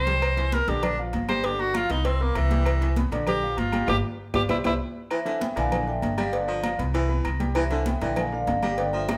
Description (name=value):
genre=latin, salsa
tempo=196 BPM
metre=4/4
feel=straight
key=C major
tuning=A4 = 445 Hz
part: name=clear tenor saxophone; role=melody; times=0.0-4.7 s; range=E3 to C5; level=-29 LUFS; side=equal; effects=none
part: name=upright bass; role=bass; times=0.0-9.2 s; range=G1 to C2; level=-30 LUFS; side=equal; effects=none
part: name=clear grand piano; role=accompaniment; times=0.1-9.2 s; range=D3 to E6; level=-35 LUFS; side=equal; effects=none
part: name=congas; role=percussion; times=0.1-9.2 s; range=none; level=-35 LUFS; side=equal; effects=none
part: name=cowbell and bongos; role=percussion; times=0.1-9.2 s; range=none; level=-37 LUFS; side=equal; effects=none
part: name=agogo bells and timbales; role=percussion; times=0.2-9.2 s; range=none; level=-37 LUFS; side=equal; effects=none
part: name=claves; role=percussion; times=0.2-9.2 s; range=none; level=-45 LUFS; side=equal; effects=none
part: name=vibraphone with soft mallets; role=melody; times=5.1-9.2 s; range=C5 to Ab5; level=-31 LUFS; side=equal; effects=none
part: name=breathy baritone saxophone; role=second line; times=5.1-9.2 s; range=D3 to G3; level=-34 LUFS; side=equal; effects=none
room=moderate large studio reverb, RT60 1.1 s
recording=band playing live in one room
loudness=-25 LUFS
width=mono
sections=0.0-5.1 A section; 5.1-9.2 B section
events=drum fill 0.0, 3.9-5.1; tenor saxophone solo 0.0-5.1; band accent 3.9-5.1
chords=0.0 Cmaj7; 0.8 Bb; 1.4 G7; 2.1 Cmaj7; 3.3 Bb; 3.9 G7; 4.5 Cmaj7; 5.7 Bb; 6.3 G7; 6.9 Cmaj7; 8.2 Bb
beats=| 0.22 0.53 0.83 1.14 | 1.44 1.75 2.05 2.36 | 2.66 2.97 3.27 3.58 | 3.88 4.19 4.50 4.80 | 5.11 5.41 5.72 6.03 | 6.33 6.64 6.94 7.25 | 7.56 7.86 8.17 8.48 | 8.78 9.09